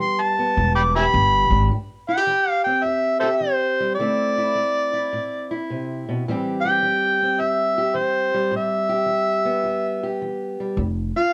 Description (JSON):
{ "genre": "acoustic country blues, solo or duo", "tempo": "106 BPM", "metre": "4/4", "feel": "swing 67% on 8ths", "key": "A minor", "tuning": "A4 = 440 Hz", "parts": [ { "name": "overdriven harmonica", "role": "melody", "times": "0.0-11.3 s", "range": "A4 to D6", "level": "-22 LUFS", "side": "equal", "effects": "none" }, { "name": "fingerpicked steel-string acoustic guitar", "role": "accompaniment", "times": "0.0-11.3 s", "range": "E2 to G4", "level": "-28 LUFS", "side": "equal", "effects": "none" }, { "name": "upright bass", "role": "bass", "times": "0.6-1.7, 10.8-11.1 s", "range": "E1 to G#1", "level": "-23 LUFS", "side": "equal", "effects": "none" } ], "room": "moderate studio reverb, RT60 0.6 s", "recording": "dark, warm production", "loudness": "-21 LUFS", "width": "mono", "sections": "0.0-1.7 A section; 1.7-11.3 B section", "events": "harmonica solo 0.0-1.7", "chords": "0.0 Asus2; 0.6 E7#9; 1.7 Am7; 4.0 Dsus2; 6.2 Am9; 10.8 N.C." }